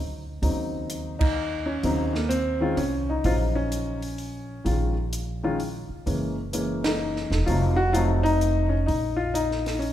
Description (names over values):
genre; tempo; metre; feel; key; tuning
jazz piano trio; 128 BPM; 3/4; swing 66% on 8ths; Bb minor; A4 = 440 Hz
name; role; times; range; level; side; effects
upright bass; bass; 0.0-9.9 s; Fb1 to Eb2; -27 LUFS; right 1 dB; none
warm baby grand piano; melody; 0.4-9.9 s; Db3 to C5; -26 LUFS; left 2 dB; none
compact cocktail drum kit; drums; 0.4-9.9 s; hi-hat, kick drum, ride cymbal, snare drum; -30 LUFS; right 2 dB; none
room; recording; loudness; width
moderate concert hall reverb, RT60 1.8 s; recorded in a church or concert hall; -23 LUFS; side -12 dB against mid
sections
0.0-9.9 A section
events
band accent 1.1, 6.8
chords
0.4 Ebm7; 3.2 Bbm; 6.1 Gb7; 7.5 F7b9; 8.9 Bbsus4